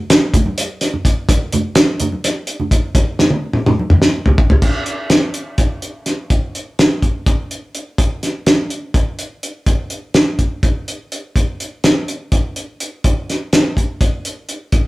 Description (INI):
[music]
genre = rock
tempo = 249 BPM (eighths)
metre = 7/8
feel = straight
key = none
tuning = none
[part]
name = cloth-damped thuddy drum kit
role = drums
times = 0.1-14.8 s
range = crash cymbal, hi-hat, kick drum, snare drum, toms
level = -14 LUFS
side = equal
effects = none
[part]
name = congas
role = percussion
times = 0.1-4.4 s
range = none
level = -21 LUFS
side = right 1 dB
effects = none
[sound]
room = moderate studio reverb, RT60 0.6 s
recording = rough rehearsal-room recording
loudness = -14 LUFS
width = side -19 dB against mid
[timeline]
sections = 0.0-4.6 A section; 4.6-14.9 B section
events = drum fill 3.2-4.6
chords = none